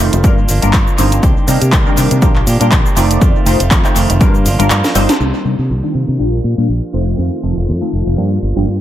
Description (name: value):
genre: filtered disco house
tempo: 121 BPM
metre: 4/4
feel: swing 56% on 16ths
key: G minor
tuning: A4 = 441 Hz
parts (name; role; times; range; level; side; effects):
- funky polysynth comp; accompaniment; 0.0-8.7 s; Eb3 to D5; -18 LUFS; equal; chorus, phaser, sidechain pumping, low-pass filter
- direct-recorded clean electric guitar; riff; 0.0-8.8 s; Eb3 to G4; -22 LUFS; right 2 dB; vintage 12-bit sampler grit, sidechain pumping, low-pass filter
- fingered electric bass; bass; 0.0-8.8 s; F1 to C3; -15 LUFS; equal; sidechain pumping, low-pass filter
- house drum kit; drums; 0.1-5.2 s; cabasa, handclaps, hi-hat, snare drum; -18 LUFS; equal; overdrive, sidechain pumping on hats, low-pass filter on hats, sidechain pumping on perc, low-pass filter on perc, low-pass filter on snare, low-pass filter on room, tape echo
- electronic kick drum; drums; 0.2-4.3 s; none; -12 LUFS; equal; overdrive
- phased string machine; sustained chords; 5.7-8.8 s; F4 to F5; -26 LUFS; left 3 dB; ensemble chorus, phaser, sidechain pumping, low-pass filter
room: light reverb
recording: echo-heavy mix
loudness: -10 LUFS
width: side -12 dB against mid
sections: 0.0-5.2 A section; 5.2-8.8 B section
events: kick drops out 4.7-5.2; drum fill 4.8-5.2; band accent 5.1; filter sweep 5.2-8.8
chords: 0.2 Gm7; 1.2 Cm9; 2.2 Bb6; 3.0 F7; 4.2 Gm7; 5.2 Cm9; 6.2 Bb6; 6.9 F7; 8.2 Gm7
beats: 0.24 0.74 | 1.23 1.73 2.23 2.72 | 3.22 3.71 4.21 4.70 | 5.20 5.70 6.19 6.69 | 7.18 7.68 8.18 8.67